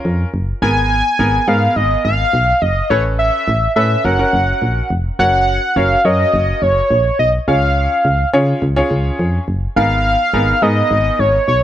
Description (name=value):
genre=synth-pop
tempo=105 BPM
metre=4/4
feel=straight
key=F# major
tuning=A4 = 440 Hz
part: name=clear grand piano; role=accompaniment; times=0.0-11.4 s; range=B3 to C#5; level=-20 LUFS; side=equal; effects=none
part: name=solid FM bass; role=bass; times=0.1-11.6 s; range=E#1 to C#3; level=-17 LUFS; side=equal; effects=none
part: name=wide unison lead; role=melody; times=0.6-11.6 s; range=C#5 to G#5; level=-15 LUFS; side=equal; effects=none
room=little or no reverb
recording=dry, gritty hardware recording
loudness=-12 LUFS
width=side -11 dB against mid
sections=0.0-5.2 A section; 5.2-11.6 A section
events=none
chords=0.0 C#; 0.6 G#madd9; 2.9 Aadd9; 4.0 F#; 7.5 C#; 9.8 G#madd9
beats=0.05 | 0.62 1.19 1.76 2.33 | 2.91 3.48 4.05 4.62 | 5.19 5.76 6.33 6.91 | 7.48 8.05 8.62 9.19 | 9.76 10.34 10.91 11.48